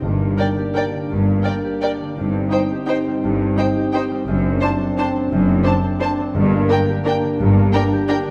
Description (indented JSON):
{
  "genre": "classical, orchestral ballroom waltz",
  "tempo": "171 BPM",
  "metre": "3/4",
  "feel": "uneven beats, rubato",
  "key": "G minor",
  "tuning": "A4 = 441 Hz",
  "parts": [
    { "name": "dark French horn section", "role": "sustained chords", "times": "0.0-8.3 s", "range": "Bb3 to Eb4", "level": "-25 LUFS", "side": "equal", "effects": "none" },
    { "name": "concert harp", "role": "arpeggios", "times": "0.0-8.3 s", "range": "F#2 to A4", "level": "-28 LUFS", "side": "equal", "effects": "none" },
    { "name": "clear symphonic cello section", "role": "bass", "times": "0.0-7.7 s", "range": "F#2 to G2", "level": "-24 LUFS", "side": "equal", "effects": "none" },
    { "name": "rich symphonic double bass section", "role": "bass", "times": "0.0-7.7 s", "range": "F#1 to G1", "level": "-25 LUFS", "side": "equal", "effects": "none" },
    { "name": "timpani", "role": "percussion", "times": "0.0-0.5, 6.3-6.8 s", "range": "G2", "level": "-28 LUFS", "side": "equal", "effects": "none" },
    { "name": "clear symphonic violin section", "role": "melody", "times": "0.4-8.2 s", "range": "G5 to A5", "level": "-30 LUFS", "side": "equal", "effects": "none" },
    { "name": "rich symphonic violin section", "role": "second line", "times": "0.4-8.2 s", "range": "Bb4 to D5", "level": "-28 LUFS", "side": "equal", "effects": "none" },
    { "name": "rich symphonic viola section", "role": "accompaniment", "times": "0.4-8.2 s", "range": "D4 to Bb4", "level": "-30 LUFS", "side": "equal", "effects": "none" }
  ],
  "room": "moderate scoring stage reverb, RT60 1.6 s",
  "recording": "none",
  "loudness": "-19 LUFS",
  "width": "mono",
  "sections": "0.0-8.3 A section",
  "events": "none",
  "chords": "0.0 Gm; 2.2 Cm/G; 4.3 D7/F#; 6.4 Gm"
}